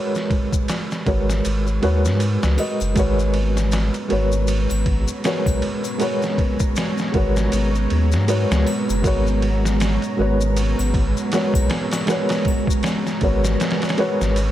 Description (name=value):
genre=trip hop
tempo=79 BPM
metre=4/4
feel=swing 58% on 16ths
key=G# minor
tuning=A4 = 440 Hz
part: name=felt-muted upright piano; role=accompaniment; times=0.0-14.5 s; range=G#3 to D#5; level=-22 LUFS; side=right 1 dB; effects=tremolo, tape echo
part: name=maracas and triangle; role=percussion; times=0.1-14.5 s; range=none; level=-35 LUFS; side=left 5 dB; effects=none
part: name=trip hop sampler-style drum kit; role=drums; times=0.2-14.5 s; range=kick drum, ride cymbal, snare drum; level=-24 LUFS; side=equal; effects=overdrive
part: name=warm sub bass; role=bass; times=1.1-14.5 s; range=F#1 to G#2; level=-20 LUFS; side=equal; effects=none
part: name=string machine, cellos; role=sustained chords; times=3.0-14.5 s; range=G#3 to A#5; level=-26 LUFS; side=equal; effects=ensemble chorus, vintage 12-bit sampler grit
room=light reverb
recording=none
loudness=-18 LUFS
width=side -13 dB against mid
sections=0.0-14.5 A section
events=none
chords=0.0 G#m11